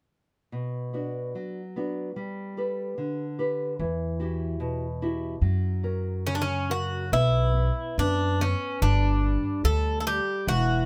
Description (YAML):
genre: fado-style ballad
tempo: 73 BPM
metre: 2/4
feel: rubato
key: B minor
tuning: A4 = 440 Hz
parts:
  - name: nylon-string guitar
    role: accompaniment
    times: 0.5-10.9 s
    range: B2 to B4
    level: -34 LUFS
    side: equal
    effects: none
  - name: upright bass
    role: bass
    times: 3.8-10.9 s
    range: E1 to F#2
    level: -28 LUFS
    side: equal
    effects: none
  - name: Greek bouzouki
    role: melody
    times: 6.3-10.9 s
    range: C#4 to A4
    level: -29 LUFS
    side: equal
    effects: none
room: little or no reverb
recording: close, detailed microphones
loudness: -27 LUFS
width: mono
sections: 0.5-7.1 A section; 7.1-10.9 B section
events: none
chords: 0.5 Bm; 2.2 Gadd9; 3.8 Emadd9; 5.4 F#; 7.1 B5; 8.8 G5